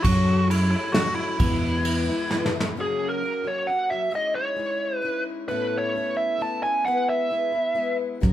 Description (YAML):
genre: folk rock and heartland rock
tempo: 132 BPM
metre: 3/4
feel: straight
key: E major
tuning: A4 = 441 Hz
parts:
  - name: biting lead guitar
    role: melody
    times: 0.0-8.0 s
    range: E4 to A5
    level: -25 LUFS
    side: right 1 dB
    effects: overdrive
  - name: picked plugged-in twelve-string acoustic guitar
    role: accompaniment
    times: 0.0-8.3 s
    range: E2 to B4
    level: -30 LUFS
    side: left 5 dB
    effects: none
  - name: soft brush drum kit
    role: drums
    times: 0.0-2.7, 8.2-8.3 s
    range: crash cymbal, hi-hat, kick drum, ride cymbal, snare drum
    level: -25 LUFS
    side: right 1 dB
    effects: none
  - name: fingered electric bass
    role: bass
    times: 0.1-2.1, 8.2-8.3 s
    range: E2 to F#2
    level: -22 LUFS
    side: equal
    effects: none
room: moderate large studio reverb, RT60 1.3 s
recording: band playing live in one room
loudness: -22 LUFS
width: side -12 dB against mid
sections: 0.0-2.8 A section; 2.8-8.3 B section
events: drum fill 2.3-2.8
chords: 0.0 F#madd9; 1.4 E; 2.8 F#; 4.1 C#madd9/G#; 5.5 Aadd9; 6.9 E/G#